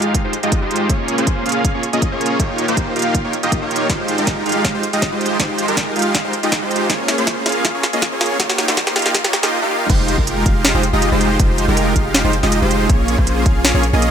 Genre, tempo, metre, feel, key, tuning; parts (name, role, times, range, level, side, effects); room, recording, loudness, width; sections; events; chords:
future bass; 160 BPM; 4/4; half-time; F minor; A4 = 441 Hz
dense compressed supersaw; riff; 0.0-14.1 s; Ab3 to F5; -17 LUFS; right 1 dB; sidechain pumping, low-pass filter, ping-pong delay
trap drum kit; drums; 0.0-14.1 s; crash cymbal, hi-hat, snare drum; -19 LUFS; right 1 dB; high-pass filter on snare, high-pass filter on hats, high-pass filter on cymbals
electronic kick drum; drums; 0.1-13.5 s; -18 LUFS; equal
long sustained 808-style bass; bass; 9.9-14.1 s; F1 to Bb1; -19 LUFS; equal; sidechain pumping
moderate lush hall reverb, RT60 2.3 s; high-pass filter; -14 LUFS; side -8 dB against mid
0.0-9.9 A section; 9.9-14.1 B section
build-up 0.0-9.9; filter sweep 0.0-9.9; drum fill 3.9-9.5; drop 9.9-14.1
0.0 Fm9; 0.9 Bbm7; 2.4 Eb9; 3.9 Fm9; 6.9 Bbm7; 8.4 Eb9; 9.9 Fm9; 12.9 Bbm7